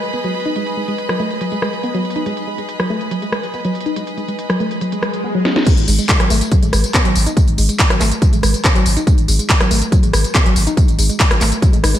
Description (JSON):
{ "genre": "driving peak-time techno", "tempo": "141 BPM", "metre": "4/4", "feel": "straight", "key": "G# minor", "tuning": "A4 = 440 Hz", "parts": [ { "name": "techno drum kit", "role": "drums", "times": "0.0-12.0 s", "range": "crash cymbal, handclaps, hi-hat, rim click, snare drum, tambourine", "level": "-19 LUFS", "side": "equal", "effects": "sidechain pumping on hats, low-pass filter on hats, sidechain pumping on cymbals, low-pass filter on cymbals, low-pass filter on snare, sidechain pumping on perc, low-pass filter on perc, low-pass filter on room, gated reverb" }, { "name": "bright studio string section", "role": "texture", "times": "0.0-5.2 s", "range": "G#4 to B5", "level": "-25 LUFS", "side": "right 1 dB", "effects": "sidechain pumping" }, { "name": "woody wave-folded pluck", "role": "riff", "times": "0.1-12.0 s", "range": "F#3 to D#4", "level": "-21 LUFS", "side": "equal", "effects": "chorus, sidechain pumping, ping-pong delay" }, { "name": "swell", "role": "sound effects", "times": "4.9-5.7 s", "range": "none", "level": "-27 LUFS", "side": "equal", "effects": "none" }, { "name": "electronic kick drum", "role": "drums", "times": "5.7-11.7 s", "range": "none", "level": "-14 LUFS", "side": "equal", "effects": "none" }, { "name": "saturated sub bass", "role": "bass", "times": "5.8-11.9 s", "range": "G#1", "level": "-19 LUFS", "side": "equal", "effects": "overdrive, sidechain pumping, low-pass filter" } ], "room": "light reverb", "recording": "bright 1980s-style digital production", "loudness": "-14 LUFS", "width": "side -12 dB against mid", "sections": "0.0-5.7 A section; 5.7-12.0 B section", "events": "filter sweep on synth arpeggio sound 0.0-5.7; swell 4.9-5.7; drum fill 5.5; drop 5.7-12.0", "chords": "0.0 G#m; 5.7 N.C." }